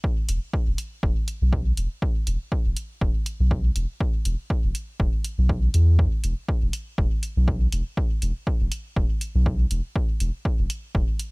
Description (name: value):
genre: dub techno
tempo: 121 BPM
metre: 4/4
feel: swing 55% on 16ths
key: unclear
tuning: A4 = 442 Hz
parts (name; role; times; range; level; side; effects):
- electronic kick drum; drums; 0.0-11.1 s; none; -24 LUFS; equal; none
- soft dub sub bass; bass; 0.3-11.0 s; E1 to E2; -21 LUFS; equal; sidechain pumping
- electronic hi-hat; drums; 0.3-11.3 s; none; -36 LUFS; right 1 dB; none
room: digital ambience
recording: none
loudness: -22 LUFS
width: side -36 dB against mid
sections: 0.0-11.3 A section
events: none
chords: none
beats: | 0.04 0.53 1.03 1.53 | 2.02 2.52 3.01 3.51 | 4.01 4.50 5.00 5.49 | 5.99 6.49 6.98 7.48 | 7.97 8.47 8.96 9.46 | 9.96 10.45 10.95